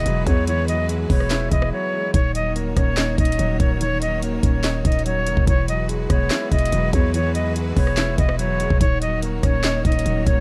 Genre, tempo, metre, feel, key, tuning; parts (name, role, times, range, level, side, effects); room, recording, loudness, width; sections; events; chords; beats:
hip hop, trap; 144 BPM; 4/4; half-time; Eb phrygian; A4 = 442 Hz
silver concert flute; melody; 0.0-10.4 s; Db5 to Eb5; -27 LUFS; equal; low-pass filter
dark baby grand piano; accompaniment; 0.0-10.4 s; Eb3 to E4; -29 LUFS; equal; low-pass filter
clear studio string section; sustained chords; 0.0-10.4 s; Eb3 to Db5; -34 LUFS; equal
growling 808-style bass; bass; 0.0-10.4 s; Eb1 to E2; -25 LUFS; equal
trap drum kit; drums; 0.1-10.4 s; handclaps, hi-hat, kick drum, rim click, snare drum; -23 LUFS; equal
small room ambience; -20 LUFS; mono
0.0-2.1 A section; 2.1-10.4 A section
break 1.7-2.1
0.0 Eadd9; 2.1 Ebm7; 5.5 Eadd9; 8.8 Ebm7
0.06 | 0.47 0.89 1.31 1.72 | 2.14 2.56 2.97 3.39 | 3.81 4.22 4.64 5.06 | 5.47 5.89 6.31 6.72 | 7.14 7.56 7.97 8.39 | 8.81 9.22 9.64 10.06